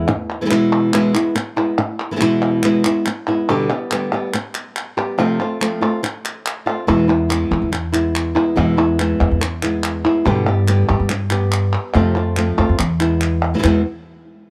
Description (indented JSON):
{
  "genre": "flamenco",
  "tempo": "142 BPM",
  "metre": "4/4",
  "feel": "straight",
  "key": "unclear",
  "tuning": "A4 = 441 Hz",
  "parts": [
    { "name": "flamenco guitar", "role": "melody", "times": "0.0-13.8 s", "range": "E2 to G4", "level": "-20 LUFS", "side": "equal", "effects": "none" },
    { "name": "upright bass", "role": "bass", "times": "0.0-0.1, 6.9-13.8 s", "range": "E2 to G2", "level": "-21 LUFS", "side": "equal", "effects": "none" },
    { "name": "palmas hand claps", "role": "percussion", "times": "0.1-13.7 s", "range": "none", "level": "-26 LUFS", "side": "equal", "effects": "none" }
  ],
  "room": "light reverb, small room ambience",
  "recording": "dry, close 1970s-style studio recording",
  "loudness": "-18 LUFS",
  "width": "mono",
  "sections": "0.1-13.6 A section",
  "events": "none",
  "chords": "0.1 E; 3.5 G; 5.2 F; 6.9 E; 10.3 G; 11.9 F; 12.8 E; 13.6 E5"
}